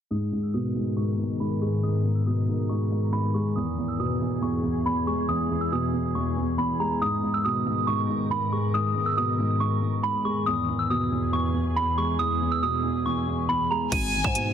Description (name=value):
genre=hip hop, drill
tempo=139 BPM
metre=4/4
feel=half-time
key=G# minor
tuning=A4 = 440 Hz
part: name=soft synth bell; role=melody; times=0.1-14.5 s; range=A#5 to E7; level=-28 LUFS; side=right 2 dB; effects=chorus, phaser, low-pass filter, tape echo
part: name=dark concert grand piano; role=accompaniment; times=0.1-14.5 s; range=E2 to G#3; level=-27 LUFS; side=equal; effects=low-pass filter
part: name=glassy FM pad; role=sustained chords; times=0.5-14.5 s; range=E2 to B4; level=-29 LUFS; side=left 1 dB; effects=ensemble chorus, built-in reverb, low-pass filter
part: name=rich studio violin section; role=second line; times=13.9-14.5 s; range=G#5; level=-30 LUFS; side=left 2 dB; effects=tape echo
part: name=growling 808-style bass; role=bass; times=13.9-14.5 s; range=G#1 to G#2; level=-29 LUFS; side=left 1 dB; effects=none
part: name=drill drum kit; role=drums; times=13.9-14.5 s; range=crash cymbal, hi-hat, kick drum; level=-28 LUFS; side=left 1 dB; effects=none
room=light reverb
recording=dense, heavily limited modern master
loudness=-23 LUFS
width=side -9 dB against mid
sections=0.1-13.9 A section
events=filter sweep 0.1-13.9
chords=0.1 G#madd9; 3.6 E; 7.0 G#madd9; 10.5 E; 13.9 G#m